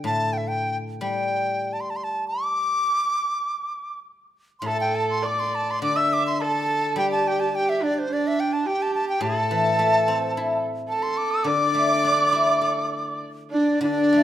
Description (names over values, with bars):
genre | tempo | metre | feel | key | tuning
chinese traditional, Chinese chamber ensemble | 105 BPM | 4/4 | uneven beats, rubato | D shang mode | A4 = 440 Hz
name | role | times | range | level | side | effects
guzheng | accompaniment | 0.0-14.2 s | A2 to A4 | -26 LUFS | left 3 dB | none
bright large dizi | melody | 0.1-14.2 s | C5 to E6 | -24 LUFS | equal | none
bright horsehead fiddle | second line | 4.6-14.2 s | D4 to E5 | -25 LUFS | right 3 dB | none
breathy bright xiao | second line | 13.5-14.2 s | D4 to E4 | -23 LUFS | left 3 dB | none
room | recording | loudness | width
moderate recital hall reverb, RT60 1.6 s | none | -21 LUFS | side -12 dB against mid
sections
0.0-4.6 A section; 4.6-13.8 B section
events
none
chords
none